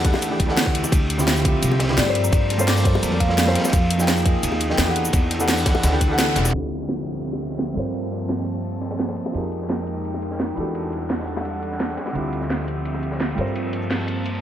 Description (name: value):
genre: liquid drum and bass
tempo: 171 BPM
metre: 4/4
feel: straight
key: unclear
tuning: A4 = 440 Hz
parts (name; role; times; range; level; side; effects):
- felt-muted upright piano; accompaniment; 0.0-14.4 s; D3 to G5; -26 LUFS; equal; ping-pong delay
- airy breathy pad; sustained chords; 0.0-14.4 s; F3 to A5; -29 LUFS; right 1 dB; chorus, sidechain pumping
- upright bass; bass; 0.0-14.4 s; E1 to G2; -25 LUFS; equal; none
- crunchy breakbeat drum kit; drums; 0.0-14.4 s; hi-hat, ride cymbal, snare drum; -31 LUFS; equal; high-pass filter on cymbals, low-pass filter on cymbals, small room ambience, high-pass filter on hats, low-pass filter on hats, high-pass filter on snare, low-pass filter on snare, high-pass filter on room, low-pass filter on room
- electronic kick drum; drums; 0.0-6.1 s; none; -20 LUFS; equal; small room ambience
- garage drum kit; drums; 0.0-14.3 s; cabasa, hi-hat, snare drum; -25 LUFS; right 1 dB; small room ambience
- bongos; percussion; 0.1-13.0 s; none; -31 LUFS; left 4 dB; none
- kalimba; melody; 2.0-3.7 s; D5 to D6; -28 LUFS; left 2 dB; dub echo
- downlifter; sound effects; 6.6-9.3 s; none; -37 LUFS; equal; none
room: light reverb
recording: low-pass filter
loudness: -19 LUFS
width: side -11 dB against mid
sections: 0.0-6.5 A section; 6.5-14.4 B section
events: drop 0.0-6.5; kick drops out 6.2-6.5; band accent 6.2; filter sweep 6.5-14.4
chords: 0.0 Em11; 0.9 Dm11; 2.2 Gm11; 3.7 Fm11; 5.0 Em11; 6.5 Dm11; 7.8 Gm11; 9.3 Fm11; 10.6 Em11; 12.2 Dm11; 13.4 Gm11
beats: 0.22 0.57 | 0.92 1.27 1.63 1.98 | 2.33 2.68 3.03 3.38 | 3.73 4.08 4.43 4.78 | 5.13 5.49 5.84 6.19 | 6.54 6.89 7.24 7.59 | 7.94 8.29 8.64 8.99 | 9.35 9.70 10.05 10.40 | 10.75 11.10 11.45 11.80 | 12.15 12.50 12.85 13.21 | 13.55 13.91 14.26